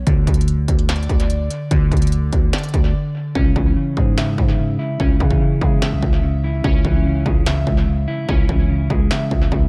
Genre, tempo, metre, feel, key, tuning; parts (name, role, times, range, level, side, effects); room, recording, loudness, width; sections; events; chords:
hip hop, trap; 146 BPM; 4/4; half-time; C# phrygian; A4 = 440 Hz
glassy digital keys; arpeggios; 0.0-9.7 s; D3 to E5; -26 LUFS; equal; chorus, low-pass filter, analog delay
growling 808-style bass; bass; 0.0-9.7 s; B1 to C#3; -23 LUFS; equal
industrial drum kit; drums; 0.1-9.6 s; hi-hat, kick drum, snare drum; -21 LUFS; equal; distortion
mellow electric guitar; accompaniment; 3.4-9.7 s; C#3 to E4; -23 LUFS; equal; spring reverb, low-pass filter, analog delay
little or no reverb; echo-heavy mix; -18 LUFS; mono
0.0-9.7 A section
break 2.9-3.4; hi-hats muted 3.4-9.7
0.1 N.C.; 3.4 C#m